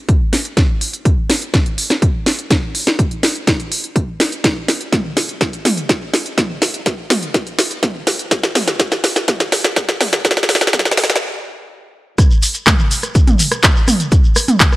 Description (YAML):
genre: techno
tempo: 124 BPM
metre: 4/4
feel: straight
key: none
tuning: none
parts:
  - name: electronic kick drum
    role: drums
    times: 0.1-14.7 s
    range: none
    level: -14 LUFS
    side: equal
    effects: none
  - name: techno drum kit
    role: drums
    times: 0.1-14.8 s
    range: handclaps, hi-hat, rim click, snare drum, toms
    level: -15 LUFS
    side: equal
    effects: none
  - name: shekere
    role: percussion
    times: 12.2-14.8 s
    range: none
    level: -22 LUFS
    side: left 1 dB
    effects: none
room: light reverb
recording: dry, gritty hardware recording, high-pass filter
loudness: -13 LUFS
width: side -18 dB against mid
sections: 0.0-12.2 A section; 12.2-14.8 B section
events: build-up 0.0-12.2; drum fill 0.0-11.2; filter sweep 0.0-12.2; stop 11.2-12.2; drop 12.2-14.8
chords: none